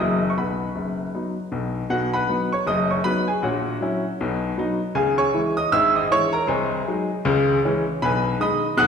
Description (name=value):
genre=jazz, stride piano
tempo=157 BPM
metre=4/4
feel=swing 60% on 8ths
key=B major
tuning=A4 = 439 Hz
part: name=clear baby grand piano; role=solo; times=0.0-8.9 s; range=F#1 to F#6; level=-20 LUFS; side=equal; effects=none
room=wet recital hall reverb, RT60 1.6 s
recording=recorded in a church or concert hall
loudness=-20 LUFS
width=side -6 dB against mid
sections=0.0-1.9 A section; 1.9-8.9 B section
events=none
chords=0.4 B; 3.4 F#7/A#; 4.2 B; 5.0 C#m; 6.5 G#7/B#; 7.3 C#m; 8.0 G#m/B